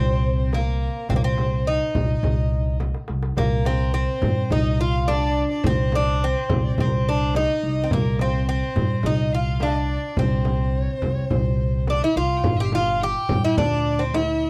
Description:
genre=Turkish makam ensemble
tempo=106 BPM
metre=4/4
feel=straight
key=C makam nihavent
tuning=A4 = 439 Hz
part: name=Greek bouzouki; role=melody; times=0.0-14.5 s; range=Bb3 to G4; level=-27 LUFS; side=equal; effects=none
part: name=rich violin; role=second line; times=0.0-14.5 s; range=Bb4 to G5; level=-34 LUFS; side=equal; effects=none
part: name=upright bass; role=bass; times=0.0-14.5 s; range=G1 to G2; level=-26 LUFS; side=equal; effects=none
part: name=darbuka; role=percussion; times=0.1-14.3 s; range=none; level=-30 LUFS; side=equal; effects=none
part: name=frame drum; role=percussion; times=0.5-14.3 s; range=none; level=-30 LUFS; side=equal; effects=none
room=little or no reverb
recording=dry, close 1970s-style studio recording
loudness=-22 LUFS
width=mono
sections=0.0-12.4 A section; 12.4-14.5 B section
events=drum fill 2.8-3.4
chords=none

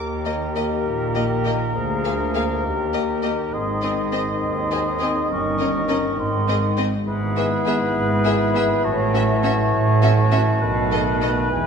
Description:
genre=cinematic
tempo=68 BPM (dotted quarters)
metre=6/8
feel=straight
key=Eb major, E major from 7.1 s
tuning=A4 = 435 Hz
part: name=baroque flute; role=second line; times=0.0-11.7 s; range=G#5 to Db6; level=-29 LUFS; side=right 2 dB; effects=none
part: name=bright clarinet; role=second line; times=0.0-11.7 s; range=E4 to Bb4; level=-31 LUFS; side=left 2 dB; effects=none
part: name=warm oboe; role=second line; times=0.0-11.7 s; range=Bb4 to Eb5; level=-28 LUFS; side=equal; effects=none
part: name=mellow bassoon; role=accompaniment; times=0.0-11.7 s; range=Eb3 to F3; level=-29 LUFS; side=right 1 dB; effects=none
part: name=clear French horn section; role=sustained chords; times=0.0-11.7 s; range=F#3 to Ab4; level=-26 LUFS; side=left 5 dB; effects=none
part: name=rich studio cello section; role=bass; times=0.0-11.7 s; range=D2 to B2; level=-26 LUFS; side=right 2 dB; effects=none
part: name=rich studio double bass section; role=bass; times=0.0-11.7 s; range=E1 to Eb2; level=-26 LUFS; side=right 3 dB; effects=none
part: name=rich chamber violin section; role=melody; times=0.3-11.3 s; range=Eb5 to F5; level=-30 LUFS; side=left 2 dB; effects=none
part: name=rich chamber violin section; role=second line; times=0.3-11.3 s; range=F#4 to Bb4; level=-33 LUFS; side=left 4 dB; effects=none
part: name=rich chamber viola section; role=accompaniment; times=0.3-11.3 s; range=Bb3 to Db4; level=-30 LUFS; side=right 1 dB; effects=none
room=wet scoring stage reverb, RT60 1.7 s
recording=minimal, uncompressed stereo recording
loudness=-18 LUFS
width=side -6 dB against mid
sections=0.0-11.7 A section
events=none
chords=0.0 Eb; 1.8 Bb7/D; 2.6 Eb; 3.5 Ab; 5.3 Eb7/G; 6.2 Ab; 7.1 E/G#; 8.8 F#m7/A; 10.6 B7

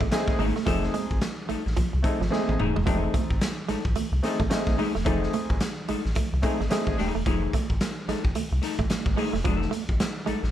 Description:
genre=funk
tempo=109 BPM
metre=4/4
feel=swing 60% on 16ths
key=F mixolydian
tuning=A4 = 439 Hz
part: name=vintage hollow-body jazz guitar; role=accompaniment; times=0.0-10.5 s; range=A3 to A4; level=-32 LUFS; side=left 7 dB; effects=none
part: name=semi-hollow electric guitar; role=riff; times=0.0-10.4 s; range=F3 to A3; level=-32 LUFS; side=right 7 dB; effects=none
part: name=sub bass with octave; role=bass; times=0.0-10.5 s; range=Eb1 to C2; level=-28 LUFS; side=equal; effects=none
part: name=raw garage drum kit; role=drums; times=0.0-10.5 s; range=hi-hat, kick drum, snare drum, toms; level=-27 LUFS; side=equal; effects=none
part: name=warm upright piano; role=stabs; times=0.1-7.0 s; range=A3 to A4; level=-29 LUFS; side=equal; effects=none
part: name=congas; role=percussion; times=0.1-10.2 s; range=none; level=-36 LUFS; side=right 8 dB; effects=none
room=light reverb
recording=none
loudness=-23 LUFS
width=side -11 dB against mid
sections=0.0-10.5 A section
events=drum fill 2.3-2.9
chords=0.0 F7#9

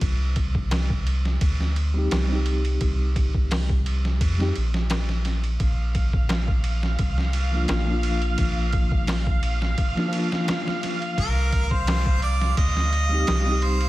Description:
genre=trip hop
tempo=86 BPM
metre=4/4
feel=swing 53% on 16ths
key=C minor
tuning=A4 = 438 Hz
part: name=reed electric piano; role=accompaniment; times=0.0-13.9 s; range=F3 to G4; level=-29 LUFS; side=left 1 dB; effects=tremolo, tape echo
part: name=soft dub sub bass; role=bass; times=0.0-13.9 s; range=Bb1 to F2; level=-23 LUFS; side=equal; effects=none
part: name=trip hop sampler-style drum kit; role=drums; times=0.0-13.9 s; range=hi-hat, kick drum, ride cymbal, snare drum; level=-26 LUFS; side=equal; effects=overdrive
part: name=darbuka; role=percussion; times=0.7-13.4 s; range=none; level=-35 LUFS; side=left 3 dB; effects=none
part: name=dark studio string section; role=sustained chords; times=5.6-13.9 s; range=F5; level=-32 LUFS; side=right 2 dB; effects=none
part: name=warm harmonica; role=melody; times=11.2-13.9 s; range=Bb4 to Eb5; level=-26 LUFS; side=right 2 dB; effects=tape echo
room=little or no reverb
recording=none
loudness=-21 LUFS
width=side -17 dB against mid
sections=0.0-13.9 A section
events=none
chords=0.0 Cm; 5.6 Bb; 11.2 Cm

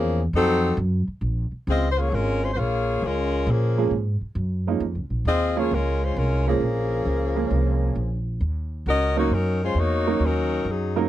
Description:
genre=jazz, big band swing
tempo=134 BPM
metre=4/4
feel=swing 67% on 8ths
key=Bb minor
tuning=A4 = 438 Hz
part: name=mellow saxophone section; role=melody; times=0.0-11.1 s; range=F3 to Eb5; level=-24 LUFS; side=left 2 dB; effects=none
part: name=upright bass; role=bass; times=0.0-11.1 s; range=Ab1 to Bb2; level=-24 LUFS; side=equal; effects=none
part: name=clear upright piano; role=accompaniment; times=3.8-11.1 s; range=F3 to Bb4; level=-25 LUFS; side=right 9 dB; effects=none
room=little or no reverb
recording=dry, close 1970s-style studio recording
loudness=-21 LUFS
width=side -13 dB against mid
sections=0.0-1.2 A section; 1.2-11.1 B section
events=none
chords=0.3 F7b9; 1.2 Bbm7; 8.4 Ebm7

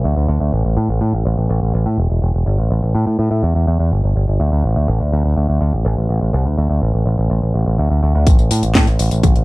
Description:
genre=italo disco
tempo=124 BPM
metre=4/4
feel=straight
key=unclear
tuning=A4 = 440 Hz
part: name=picked electric bass with an envelope filter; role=bass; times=0.0-9.4 s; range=E1 to A2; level=-14 LUFS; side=equal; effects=none
part: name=electronic kick drum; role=drums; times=8.3-9.3 s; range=none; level=-13 LUFS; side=equal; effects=small room ambience
part: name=house drum kit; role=drums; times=8.3-9.4 s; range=handclaps, hi-hat, snare drum, tambourine, toms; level=-20 LUFS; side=left 2 dB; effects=small room ambience
room=little or no reverb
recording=dry, close 1970s-style studio recording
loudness=-14 LUFS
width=side -22 dB against mid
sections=0.0-8.3 A section; 8.3-9.4 B section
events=none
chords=none

